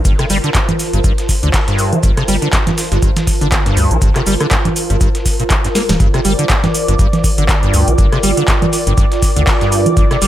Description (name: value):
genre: acid house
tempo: 121 BPM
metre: 4/4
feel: swing 56% on 16ths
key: G minor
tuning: A4 = 440 Hz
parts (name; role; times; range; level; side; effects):
- ethereal airy pad; texture; 0.0-10.3 s; F4 to A5; -21 LUFS; right 2 dB; ensemble chorus, built-in reverb, sidechain pumping
- liquid acid bass; riff; 0.1-10.3 s; G2 to Bb3; -18 LUFS; equal; overdrive, analog chorus, dub echo
- round analog bass; bass; 0.1-10.3 s; D1 to D2; -16 LUFS; equal; sidechain pumping
- booming analog drum machine; drums; 0.1-10.3 s; congas, handclaps, hi-hat, rim click, shaker, snare drum; -18 LUFS; right 1 dB; overdrive
- dusty soul sampler-style drum kit; drums; 0.1-10.3 s; hi-hat, shaker, snare drum; -28 LUFS; equal; sidechain pumping on perc, high-pass filter on perc, high-pass filter on snare, sidechain pumping on hats, high-pass filter on hats
- electronic kick drum; drums; 0.1-10.1 s; none; -15 LUFS; equal; overdrive
- lush unison pad; sustained chords; 6.3-10.3 s; D5; -22 LUFS; equal; chorus, vintage 12-bit sampler grit, sidechain pumping
room: light reverb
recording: none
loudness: -11 LUFS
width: side -12 dB against mid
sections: 0.0-6.0 A section; 6.0-10.3 B section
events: drum fill 5.8; drop 6.0-10.3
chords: 0.0 Gm7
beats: | 0.05 0.55 1.04 1.54 | 2.03 2.53 3.03 3.52 | 4.02 4.51 5.01 5.50 | 6.00 6.50 6.99 7.49 | 7.98 8.48 8.98 9.47 | 9.97